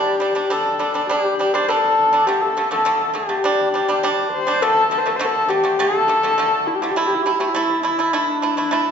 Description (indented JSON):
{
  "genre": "mongolian traditional, Mongolian folk",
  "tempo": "102 BPM",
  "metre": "4/4",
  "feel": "straight",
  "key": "unclear",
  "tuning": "A4 = 440 Hz",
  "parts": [
    { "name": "warm horsehead fiddle", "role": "melody", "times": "0.0-8.9 s", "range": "D4 to C5", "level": "-18 LUFS", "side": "left 2 dB", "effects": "none" },
    { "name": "pipa", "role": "arpeggios", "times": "0.0-8.9 s", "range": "D3 to E4", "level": "-20 LUFS", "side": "right 3 dB", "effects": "none" }
  ],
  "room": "wet recital hall reverb, RT60 1.4 s",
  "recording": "recorded in a church or concert hall, nothing above 7.6 kHz",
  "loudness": "-16 LUFS",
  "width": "side -7 dB against mid",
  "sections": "0.0-4.6 A section; 4.6-8.9 B section",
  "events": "none",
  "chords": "0.0 G5; 2.3 D5; 3.4 G5; 4.6 D5; 7.0 A5"
}